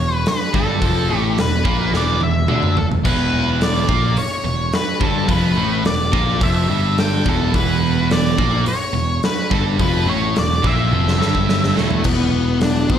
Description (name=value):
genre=quiet-loud alternative rock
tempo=107 BPM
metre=4/4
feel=straight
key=E dorian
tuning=A4 = 440 Hz
part: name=octave-fuzz lead guitar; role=melody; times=0.0-13.0 s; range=A3 to G5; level=-22 LUFS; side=left 2 dB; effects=distortion, slapback echo
part: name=crunchy overdriven guitar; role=riff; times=0.0-13.0 s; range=E2 to D4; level=-24 LUFS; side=left 10 dB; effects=phaser
part: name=high-gain distorted guitar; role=riff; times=0.0-12.0 s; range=E2 to D4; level=-23 LUFS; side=right 10 dB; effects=distortion
part: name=overdriven picked electric bass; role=bass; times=0.0-13.0 s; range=E1 to D2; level=-20 LUFS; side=right 1 dB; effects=none
part: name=big rock drum kit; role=drums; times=0.3-13.0 s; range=crash cymbal, hi-hat, kick drum, snare drum, splash cymbal, toms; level=-21 LUFS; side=equal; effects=none
room=small room ambience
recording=live gig heard through the venue's PA, club reverb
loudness=-15 LUFS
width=side -9 dB against mid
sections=0.0-12.0 A section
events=drum fill 1.9-3.1, 10.9-12.0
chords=0.0 Em; 12.0 E5